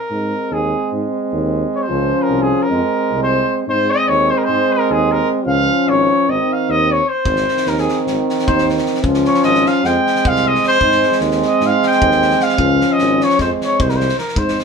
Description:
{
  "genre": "balkan folk, Balkan brass band",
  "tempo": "303 BPM (eighths)",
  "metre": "9/8",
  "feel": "straight",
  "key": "Ab major",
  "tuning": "A4 = 441 Hz",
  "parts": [
    { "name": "mellow trumpet", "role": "second line", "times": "0.0-14.6 s", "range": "Ab4 to G5", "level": "-17 LUFS", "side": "left 1 dB", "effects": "none" },
    { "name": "warm euphonium", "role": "accompaniment", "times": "0.1-14.6 s", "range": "C4 to Db4", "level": "-20 LUFS", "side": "left 3 dB", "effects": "none" },
    { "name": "warm trombone", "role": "accompaniment", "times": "0.1-14.6 s", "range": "Eb3 to Ab3", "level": "-20 LUFS", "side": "right 6 dB", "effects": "none" },
    { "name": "warm tuba", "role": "bass", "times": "0.1-14.6 s", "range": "Ab1 to Ab2", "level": "-22 LUFS", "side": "right 1 dB", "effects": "none" },
    { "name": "loose indie drum kit", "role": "percussion", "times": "7.3-14.6 s", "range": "kick drum, snare drum", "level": "-24 LUFS", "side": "equal", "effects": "none" }
  ],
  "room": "moderate studio reverb, RT60 0.6 s",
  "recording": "band playing live in one room",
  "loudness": "-13 LUFS",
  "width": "side -5 dB against mid",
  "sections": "0.0-14.6 A section",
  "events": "trumpet solo 0.0-14.6",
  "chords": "0.1 Ab; 1.9 Db; 2.7 Fm; 3.7 Ab; 5.5 Db; 6.3 Ab; 9.0 Db; 9.8 Fm; 10.8 Ab; 12.6 Db; 13.4 Fm",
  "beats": "| 0.10 0.30 0.50 0.70 0.90 1.10 1.30 1.50 1.70 | 1.90 2.09 2.29 2.49 2.69 2.89 3.09 3.29 3.48 | 3.68 3.88 4.08 4.28 4.48 4.68 4.87 5.07 5.27 | 5.47 5.67 5.87 6.06 6.26 6.46 6.66 6.86 7.06 | 7.25 7.45 7.65 7.85 8.05 8.25 8.44 8.64 8.84 | 9.04 9.24 9.43 9.63 9.83 10.03 10.22 10.42 10.62 | 10.82 11.02 11.21 11.41 11.61 11.80 12.00 12.20 12.40 | 12.59 12.79 12.99 13.18 13.38 13.58 13.77 13.97 14.17 | 14.36 14.56"
}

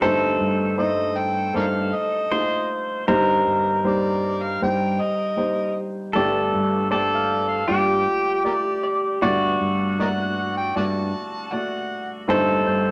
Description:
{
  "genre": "acoustic folk-pop ballad",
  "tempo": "78 BPM",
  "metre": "4/4",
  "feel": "straight",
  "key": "G minor",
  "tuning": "A4 = 438 Hz",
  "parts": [
    { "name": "pedal steel guitar", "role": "second line", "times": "0.0-12.9 s", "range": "F#4 to C5", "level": "-26 LUFS", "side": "equal", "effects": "none" },
    { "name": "warm upright piano", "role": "accompaniment", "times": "0.0-12.9 s", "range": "G1 to D5", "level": "-27 LUFS", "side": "equal", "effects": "none" },
    { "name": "fretless electric bass", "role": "bass", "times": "0.0-12.9 s", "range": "G2", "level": "-30 LUFS", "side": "equal", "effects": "none" },
    { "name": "overdriven harmonica", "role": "melody", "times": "0.8-12.1 s", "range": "G4 to A5", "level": "-28 LUFS", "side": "equal", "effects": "none" },
    { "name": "electric guitar through a small old amp", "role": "arpeggios", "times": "1.5-12.9 s", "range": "F4 to F5", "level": "-33 LUFS", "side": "equal", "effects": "harmonic tremolo" }
  ],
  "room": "wet studio reverb, RT60 0.7 s",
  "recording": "none",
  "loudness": "-22 LUFS",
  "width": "mono",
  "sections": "0.0-12.9 A section",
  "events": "none",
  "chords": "0.0 Adim/G; 3.1 Cm/G; 6.1 Gsus2; 9.2 D/G; 12.3 Adim/G",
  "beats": "| 0.01 0.78 1.55 2.31 | 3.08 3.84 4.61 5.38 | 6.14 6.91 7.68 8.45 | 9.21 9.98 10.75 11.52 | 12.29"
}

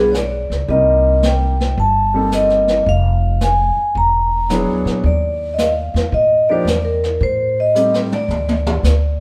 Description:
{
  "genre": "jazz, small-group swing and bop",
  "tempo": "110 BPM",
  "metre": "4/4",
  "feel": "swing 68% on 8ths",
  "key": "unclear",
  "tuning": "A4 = 439 Hz",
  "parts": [
    { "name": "vibraphone with medium mallets", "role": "melody", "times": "0.0-9.2 s", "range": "Bb4 to Bb5", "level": "-19 LUFS", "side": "equal", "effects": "none" },
    { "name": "warm grand piano", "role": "accompaniment", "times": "0.0-8.1 s", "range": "F3 to B4", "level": "-24 LUFS", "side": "equal", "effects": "none" },
    { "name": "upright bass", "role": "bass", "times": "0.0-9.2 s", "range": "E1 to Bb2", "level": "-21 LUFS", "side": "equal", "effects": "none" },
    { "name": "jazz brush drum kit", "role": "drums", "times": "0.1-9.2 s", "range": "brushed snare drum, hi-hat, kick drum, snare drum, toms", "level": "-26 LUFS", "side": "equal", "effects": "none" }
  ],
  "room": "moderate stone room reverb, RT60 1.4 s",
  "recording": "band playing live in one room",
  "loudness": "-16 LUFS",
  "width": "mono",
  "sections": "0.0-9.2 A section",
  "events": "drum fill 7.8-8.8",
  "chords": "0.0 G7; 0.7 Cm7; 2.9 Fm; 3.9 E9; 5.0 Ebmaj7sus2; 7.2 Am7b5; 8.3 D5",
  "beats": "0.14 | 0.69 1.23 1.77 2.32 | 2.86 3.40 3.95 4.49 | 5.04 5.58 6.12 6.67 | 7.21 7.76 8.30 8.85"
}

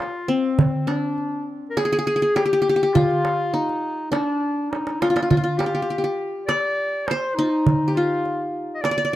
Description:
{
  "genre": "Turkish makam ensemble",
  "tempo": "102 BPM",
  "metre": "4/4",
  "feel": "straight",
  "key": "unclear",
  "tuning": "A4 = 442 Hz",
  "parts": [
    { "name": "qanun", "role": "melody", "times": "0.0-9.2 s", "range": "C4 to D5-30c", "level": "-22 LUFS", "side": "left 1 dB", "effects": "none" },
    { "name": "warm clarinet", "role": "second line", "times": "0.0-9.2 s", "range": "C4 to Eb5", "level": "-27 LUFS", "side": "left 2 dB", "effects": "none" },
    { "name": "darbuka", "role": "percussion", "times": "0.0-9.0 s", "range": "none", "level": "-23 LUFS", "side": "right 2 dB", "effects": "none" }
  ],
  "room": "small room ambience",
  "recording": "dry, close 1970s-style studio recording",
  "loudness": "-19 LUFS",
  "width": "side -14 dB against mid",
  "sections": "0.0-9.2 A section",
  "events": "drum fill 4.7-5.3",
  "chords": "none",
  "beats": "0.00 | 0.59 1.18 1.77 2.36 | 2.95 3.54 4.13 4.72 | 5.31 5.90 6.49 7.07 | 7.66 8.25 8.84"
}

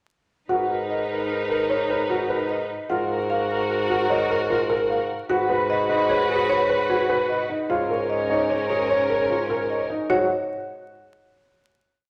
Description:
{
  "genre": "classical, minimalist pattern music",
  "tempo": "150 BPM",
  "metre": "6/4",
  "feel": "straight",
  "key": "G# dorian",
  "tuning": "A4 = 440 Hz",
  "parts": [
    { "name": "marimba with medium hard mallets", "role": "melody", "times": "0.5-10.3 s", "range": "G#4 to F#5", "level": "-30 LUFS", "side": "equal", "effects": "none" },
    { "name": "mellow soprano saxophone", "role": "second line", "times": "0.5-9.8 s", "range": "A#4 to C#5", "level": "-30 LUFS", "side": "equal", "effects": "none" },
    { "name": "rich studio string section", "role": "sustained chords", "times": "0.5-9.9 s", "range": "C#4 to B4", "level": "-31 LUFS", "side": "equal", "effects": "none" },
    { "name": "warm baby grand piano", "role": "arpeggios", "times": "0.5-10.3 s", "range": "D#4 to C#5", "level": "-27 LUFS", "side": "equal", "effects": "none" },
    { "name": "mellow bassoon", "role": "bass", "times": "0.5-10.3 s", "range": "G#2", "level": "-31 LUFS", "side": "equal", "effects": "none" }
  ],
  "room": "wet recital hall reverb, RT60 1.4 s",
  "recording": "tube saturation, vinyl crackle",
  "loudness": "-23 LUFS",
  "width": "mono",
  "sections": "0.5-10.1 A section; 10.1-12.1 final chord",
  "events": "none",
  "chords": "0.5 Bmaj7/G#; 2.9 F#maj7/G#; 5.3 G#m7; 7.7 A#m7/G#; 10.1 G#7(no3)",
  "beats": "| 0.50 0.90 1.30 1.70 2.10 2.50 | 2.90 3.30 3.70 4.10 4.50 4.90 | 5.30 5.70 6.10 6.50 6.90 7.30 | 7.70 8.10 8.50 8.90 9.30 9.70 | 10.10"
}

